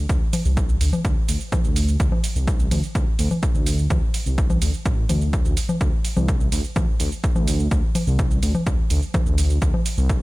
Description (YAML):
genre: melodic techno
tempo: 126 BPM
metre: 4/4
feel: straight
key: unclear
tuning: A4 = 440 Hz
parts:
  - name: dark detuned saw bass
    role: bass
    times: 0.0-10.2 s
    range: A1 to D2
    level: -22 LUFS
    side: equal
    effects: sidechain pumping
  - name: electronic kick drum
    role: drums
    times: 0.1-10.2 s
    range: none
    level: -21 LUFS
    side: equal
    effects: none
  - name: electronic shaker, hi-hat and congas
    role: drums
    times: 0.1-10.2 s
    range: none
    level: -27 LUFS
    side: equal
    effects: sidechain pumping on hats, sidechain pumping on perc, sidechain pumping on cymbals
room: little or no reverb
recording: none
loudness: -18 LUFS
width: side -20 dB against mid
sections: 0.0-10.2 A section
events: none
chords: none